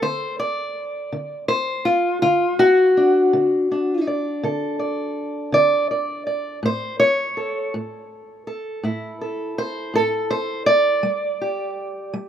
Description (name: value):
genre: acoustic country blues, solo or duo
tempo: 54 BPM (dotted quarters)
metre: 12/8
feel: straight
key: D mixolydian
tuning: A4 = 439 Hz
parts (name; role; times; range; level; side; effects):
- fingerpicked steel-string acoustic guitar; solo; 0.0-12.3 s; A2 to D5; -19 LUFS; equal; none
room: light reverb, small room ambience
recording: rough home demo mix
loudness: -18 LUFS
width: side -9 dB against mid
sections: 0.0-12.3 A section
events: steel-string acoustic guitar solo 0.0-12.3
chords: 0.0 D; 6.6 A; 11.0 G5